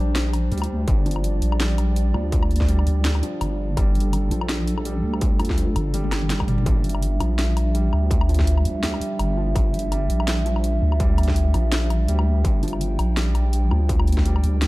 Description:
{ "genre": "half-time drum and bass", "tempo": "166 BPM", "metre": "4/4", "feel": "swing 56% on 16ths, half-time", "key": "G dorian", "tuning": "A4 = 440 Hz", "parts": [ { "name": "dark analog pad", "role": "sustained chords", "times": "0.0-14.7 s", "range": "G3 to G5", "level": "-29 LUFS", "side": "right 2 dB", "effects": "chorus, vintage 12-bit sampler grit, sidechain pumping" }, { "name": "felt-muted upright piano", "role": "arpeggios", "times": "0.0-14.7 s", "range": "F3 to D4", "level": "-30 LUFS", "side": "equal", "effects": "vintage 12-bit sampler grit, digital delay" }, { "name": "deep soft wobble bass", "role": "bass", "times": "0.0-14.7 s", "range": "G1 to D2", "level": "-21 LUFS", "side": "equal", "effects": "chorus" }, { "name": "drum and bass drum kit", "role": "drums", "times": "0.2-14.7 s", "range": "hi-hat, snare drum, toms, woodblock", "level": "-29 LUFS", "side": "left 1 dB", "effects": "overdrive" }, { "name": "electronic kick drum", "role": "drums", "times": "0.9-14.2 s", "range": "none", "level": "-22 LUFS", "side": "equal", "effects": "distortion, overdrive" } ], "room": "little or no reverb", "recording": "dark, warm production", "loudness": "-19 LUFS", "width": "side -20 dB against mid", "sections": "0.0-14.7 A section", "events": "drum fill 5.9-6.7", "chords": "0.0 G5" }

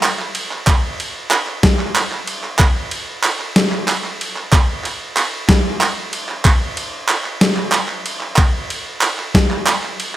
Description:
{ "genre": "folk", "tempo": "62 BPM (dotted quarters)", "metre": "6/8", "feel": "straight", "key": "none", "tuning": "none", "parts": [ { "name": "boom bap sampler-style drum kit", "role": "drums", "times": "0.0-10.1 s", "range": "kick drum, ride cymbal, snare drum", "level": "-17 LUFS", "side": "equal", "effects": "overdrive" }, { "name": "group handclap", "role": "percussion", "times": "0.0-9.9 s", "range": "none", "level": "-19 LUFS", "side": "right 3 dB", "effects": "none" } ], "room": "little or no reverb", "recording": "none", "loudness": "-15 LUFS", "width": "side -14 dB against mid", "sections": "0.0-10.2 A section", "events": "none", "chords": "none" }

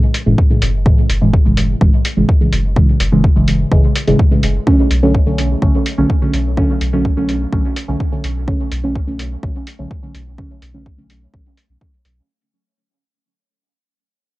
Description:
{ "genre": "dub techno", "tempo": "126 BPM", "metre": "4/4", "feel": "straight", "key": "B minor", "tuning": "A4 = 440 Hz", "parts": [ { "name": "electronic hi-hat", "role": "drums", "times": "0.1-12.1 s", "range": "none", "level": "-22 LUFS", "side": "equal", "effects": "none" }, { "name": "deep mellow chord stab", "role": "stabs", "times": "0.3-11.9 s", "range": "A2 to C#4", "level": "-16 LUFS", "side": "equal", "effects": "chorus, phaser, sidechain pumping, dub echo" }, { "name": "soft dub sub bass", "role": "bass", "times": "0.3-12.2 s", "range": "F#1 to B1", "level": "-19 LUFS", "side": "equal", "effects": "tube saturation, sidechain pumping" }, { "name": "electronic kick drum", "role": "drums", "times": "0.4-11.9 s", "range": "none", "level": "-14 LUFS", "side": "equal", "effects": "none" } ], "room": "little or no reverb", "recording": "dry, gritty hardware recording, cassette tape", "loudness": "-12 LUFS", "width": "side -18 dB against mid", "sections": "0.0-4.7 A section; 4.7-12.3 B section", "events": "filter sweep on synth stab 0.0-4.7, 4.7-12.3; fade-out 4.7-12.3", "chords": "0.0 F#m7; 4.7 Bm7" }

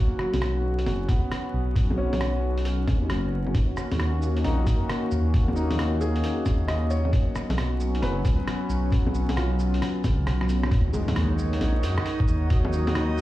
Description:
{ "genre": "future garage", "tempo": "134 BPM", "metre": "4/4", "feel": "swing 64% on 16ths", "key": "Eb minor", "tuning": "A4 = 441 Hz", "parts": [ { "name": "bright upright piano", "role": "accompaniment", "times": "0.0-13.2 s", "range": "Eb3 to Eb5", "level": "-33 LUFS", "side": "left 1 dB", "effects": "sidechain pumping, tape echo" }, { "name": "warbly tape-like pad", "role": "sustained chords", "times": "0.0-13.2 s", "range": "Eb3 to Gb5", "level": "-30 LUFS", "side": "equal", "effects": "chorus, built-in reverb, sidechain pumping" }, { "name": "swelling detuned saw bass", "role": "bass", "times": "0.0-13.2 s", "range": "F#1 to Gb2", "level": "-25 LUFS", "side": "equal", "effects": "sidechain pumping" }, { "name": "lo-fi sampler-style drum kit", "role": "drums", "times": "0.2-13.2 s", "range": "bongos, cabasa, hi-hat, rim click", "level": "-32 LUFS", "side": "left 1 dB", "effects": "none" }, { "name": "electronic kick drum", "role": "drums", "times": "1.1-12.6 s", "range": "none", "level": "-23 LUFS", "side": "equal", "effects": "none" }, { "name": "impact", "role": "sound effects", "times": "10.7-12.5 s", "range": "none", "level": "-31 LUFS", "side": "equal", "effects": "none" }, { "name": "backwards swelling texture", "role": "texture", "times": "11.9-13.2 s", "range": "Eb5", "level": "-40 LUFS", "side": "right 2 dB", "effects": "built-in reverb" } ], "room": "digital ambience", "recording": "played on a big sound system in a bare room, large studio reverb, vinyl crackle", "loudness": "-22 LUFS", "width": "side -15 dB against mid", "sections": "0.0-10.7 A section; 10.7-13.2 B section", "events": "drum fill 10.3-10.7; impact 10.7-12.5", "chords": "0.0 Bsus2; 3.5 Ebm7; 7.1 Bsus2; 10.7 Ebm7" }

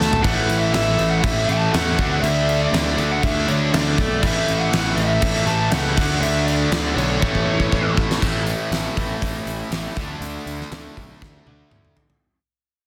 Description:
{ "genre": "hard rock", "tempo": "120 BPM", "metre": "4/4", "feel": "straight", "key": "unclear", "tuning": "A4 = 440 Hz", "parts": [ { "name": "bluesy overdriven lead guitar", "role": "melody", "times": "0.0-7.9 s", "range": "C#5 to A5", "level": "-27 LUFS", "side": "equal", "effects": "distortion, slapback echo" }, { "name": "distorted electric guitar", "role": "riff", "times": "0.0-12.0 s", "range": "A2 to D4", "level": "-29 LUFS", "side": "equal", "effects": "overdrive" }, { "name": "overdriven semi-hollow guitar", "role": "riff", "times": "0.0-12.0 s", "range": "A2 to D4", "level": "-29 LUFS", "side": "equal", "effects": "none" }, { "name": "fuzz picked electric bass", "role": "bass", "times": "0.0-12.1 s", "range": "A1 to D3", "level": "-26 LUFS", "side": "equal", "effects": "overdrive" }, { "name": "gated 80s drum kit", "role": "drums", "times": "0.0-12.2 s", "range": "crash cymbal, hi-hat, kick drum, snare drum, toms", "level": "-26 LUFS", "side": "equal", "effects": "soft clipping on kick" }, { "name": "heavy high-gain guitar", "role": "riff", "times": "0.2-8.2 s", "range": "A2 to D4", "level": "-30 LUFS", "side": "equal", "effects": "none" } ], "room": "moderate large studio reverb, RT60 0.9 s", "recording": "dense, heavily limited modern master", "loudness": "-20 LUFS", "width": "mono", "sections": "0.0-8.2 A section; 8.2-12.2 B section", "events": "drum fill 0.0, 7.2-8.2, 11.2-12.2; fade-out 8.2-12.2", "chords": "0.2 A5; 2.0 D5; 4.2 A; 6.0 D5; 7.2 A5; 10.0 D5" }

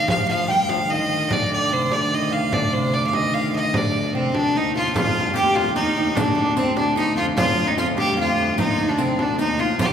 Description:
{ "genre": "medieval dance", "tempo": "99 BPM (dotted quarters)", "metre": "6/8", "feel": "straight", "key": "D phrygian", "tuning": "A4 = 439 Hz", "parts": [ { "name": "bright fiddle", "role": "melody", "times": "0.0-9.9 s", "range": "C4 to G5", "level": "-21 LUFS", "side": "equal", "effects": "none" }, { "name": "oud", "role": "second line", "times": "0.0-9.9 s", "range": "C4 to G5", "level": "-26 LUFS", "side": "right 2 dB", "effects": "none" }, { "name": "rich viola da gamba", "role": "second line", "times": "0.0-9.9 s", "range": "D2 to G3", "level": "-27 LUFS", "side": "left 3 dB", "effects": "none" }, { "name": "rich viola da gamba", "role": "drone", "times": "0.0-9.9 s", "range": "D2", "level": "-28 LUFS", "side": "right 1 dB", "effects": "none" }, { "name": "frame drum", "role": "percussion", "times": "0.1-9.9 s", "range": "none", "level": "-27 LUFS", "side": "right 1 dB", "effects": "none" }, { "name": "riq", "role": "percussion", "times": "5.0-9.9 s", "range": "none", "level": "-31 LUFS", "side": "left 3 dB", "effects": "none" } ], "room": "wet church reverb, RT60 3.8 s", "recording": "recorded in a church or concert hall", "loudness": "-18 LUFS", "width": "side -8 dB against mid", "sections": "0.0-5.0 A section; 5.0-9.9 A section", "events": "none", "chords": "none" }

